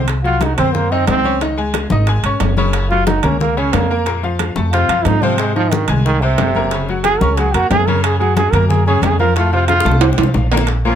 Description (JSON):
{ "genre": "latin, salsa", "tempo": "181 BPM", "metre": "4/4", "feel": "straight", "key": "unclear", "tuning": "A4 = 440 Hz", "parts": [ { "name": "bright upright piano", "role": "accompaniment", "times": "0.0-11.0 s", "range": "A2 to Eb6", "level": "-20 LUFS", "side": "left 3 dB", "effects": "none" }, { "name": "upright bass", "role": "bass", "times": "0.0-11.0 s", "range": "Gb1 to Ab2", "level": "-17 LUFS", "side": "equal", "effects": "none" }, { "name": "bongos", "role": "percussion", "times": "0.1-11.0 s", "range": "none", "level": "-26 LUFS", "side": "left 5 dB", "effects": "none" }, { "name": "congas", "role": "percussion", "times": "0.1-11.0 s", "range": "none", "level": "-22 LUFS", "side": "left 5 dB", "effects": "none" }, { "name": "timbales", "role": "percussion", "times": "0.1-10.8 s", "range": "none", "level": "-22 LUFS", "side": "right 8 dB", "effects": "none" }, { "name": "bright trombone", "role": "melody", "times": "0.2-10.0 s", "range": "C3 to Bb4", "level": "-17 LUFS", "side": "right 3 dB", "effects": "none" }, { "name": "warm horn section", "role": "melody", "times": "10.8-11.0 s", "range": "F3 to F4", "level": "-17 LUFS", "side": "left 2 dB", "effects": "none" } ], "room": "light reverb", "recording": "close, detailed microphones", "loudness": "-13 LUFS", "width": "side -9 dB against mid", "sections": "0.1-10.7 A section", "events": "trombone solo 0.1-10.7; drum fill 9.7-10.7", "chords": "0.1 Cdim; 1.4 Dbsus2; 2.7 Gb; 4.1 Fsus4; 4.7 F5; 5.4 Ab; 6.7 Gb; 8.0 Gbmaj9; 9.4 F", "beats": "| 0.09 0.42 0.75 1.08 | 1.41 1.75 2.08 2.41 | 2.74 3.07 3.40 3.73 | 4.07 4.40 4.73 5.06 | 5.39 5.72 6.05 6.38 | 6.71 7.04 7.38 7.71 | 8.04 8.37 8.70 9.03 | 9.36 9.69 10.02 10.35 | 10.68" }